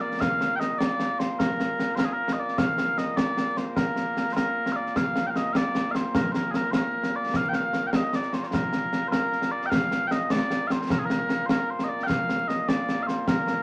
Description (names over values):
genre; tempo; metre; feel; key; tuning
scottish traditional, Scottish pipe music; 101 BPM (dotted quarters); 6/8; straight; Bb major; A4 = 440 Hz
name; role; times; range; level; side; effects
mellow small bagpipes; melody; 0.0-13.6 s; Bb2 to G5; -29 LUFS; equal; none
concert snare drum and concert bass drum; drums; 0.1-13.6 s; none; -29 LUFS; equal; none
room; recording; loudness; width
wet studio reverb, RT60 0.7 s; vinyl crackle; -26 LUFS; mono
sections
0.2-9.7 A section; 9.7-13.6 A section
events
none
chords
none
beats
| 0.21 0.80 | 1.40 1.99 | 2.58 3.18 | 3.77 4.37 | 4.96 5.55 | 6.15 6.74 | 7.34 7.93 | 8.53 9.12 | 9.71 10.31 | 10.90 11.50 | 12.09 12.68 | 13.28